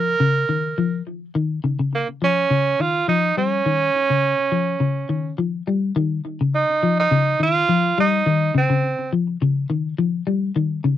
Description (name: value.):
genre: afrobeat.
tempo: 104 BPM.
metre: 4/4.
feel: straight.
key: unclear.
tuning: A4 = 439 Hz.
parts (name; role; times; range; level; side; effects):
clear tenor saxophone; melody; 0.0-9.1 s; Bb3 to Bb4; -19 LUFS; right 4 dB; none.
clean electric guitar; arpeggios; 0.0-11.0 s; Db3 to G3; -20 LUFS; left 4 dB; lush chorus, tape echo.
room: light reverb.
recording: dry, close 1970s-style studio recording.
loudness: -18 LUFS.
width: side -11 dB against mid.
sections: 0.0-6.0 A section; 6.0-11.0 B section.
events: none.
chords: 0.0 Eb7sus2; 1.4 Dbadd9.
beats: 0.20 0.78 | 1.36 1.93 2.51 3.09 | 3.66 4.24 4.82 5.39 | 5.97 6.54 7.12 7.70 | 8.27 8.85 9.42 9.99 | 10.57.